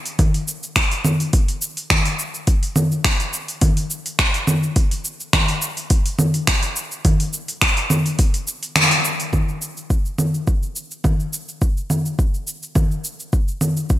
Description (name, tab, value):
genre	downtempo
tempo	105 BPM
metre	4/4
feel	swing 54% on 16ths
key	none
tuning	none
part	afro-pop drum kit	drums	0.1-14.0 s	congas, finger snaps, hi-hat, shaker	-19 LUFS	equal	overdrive, gated reverb
part	electronic kick drum	drums	0.2-14.0 s	none	-18 LUFS	equal	overdrive
room	moderate lush hall reverb, RT60 2.1 s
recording	bright 1980s-style digital production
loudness	-17 LUFS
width	side -14 dB against mid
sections	0.0-9.3 A section; 9.3-14.0 B section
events	kick drops out 8.8-9.3; band accent 8.8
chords	none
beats	| 0.19 0.76 1.33 1.90 | 2.47 3.04 3.62 4.19 | 4.76 5.33 5.90 6.47 | 7.04 7.62 8.19 8.76 | 9.33 9.90 10.47 11.04 | 11.62 12.19 12.76 13.33 | 13.90